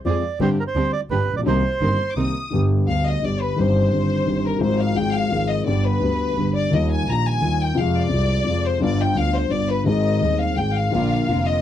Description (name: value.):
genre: tango.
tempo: 171 BPM.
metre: 3/4.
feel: rubato.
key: unclear.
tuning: A4 = 440 Hz.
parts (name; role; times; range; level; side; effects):
dark concert grand piano; accompaniment; 0.0-11.6 s; Eb1 to Ab4; -21 LUFS; left 2 dB; none.
bandoneon; melody; 0.1-2.1 s; Bb4 to D5; -24 LUFS; right 5 dB; none.
rich studio string section; stabs; 0.1-2.3, 10.9-11.6 s; B3 to Bb4; -29 LUFS; right 6 dB; none.
rich double bass; bass; 0.1-11.6 s; F1 to F2; -24 LUFS; right 2 dB; none.
rich studio violin section; second line; 1.8-11.6 s; Bb4 to Eb6; -24 LUFS; left 4 dB; none.
room: little or no reverb.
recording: dry, close 1970s-style studio recording.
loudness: -18 LUFS.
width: side -11 dB against mid.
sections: 0.0-2.5 A section; 2.5-11.6 B section.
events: violin section solo 2.5-11.6.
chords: 0.4 Gsus4; 1.1 G; 1.5 Cm7; 2.5 G; 3.6 Cm/G; 4.6 Fm/Ab; 5.7 G; 6.7 Ebadd9; 7.8 Fm; 8.8 G7; 9.9 Ab; 10.9 Bb.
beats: 0.06 | 0.41 0.76 1.11 | 1.46 1.81 2.17 | 2.53 2.88 3.23 | 3.58 3.93 4.27 | 4.62 4.96 5.31 | 5.66 6.01 6.37 | 6.73 7.08 7.43 | 7.78 8.12 8.47 | 8.82 9.17 9.52 | 9.87 10.22 10.57 | 10.93 11.28.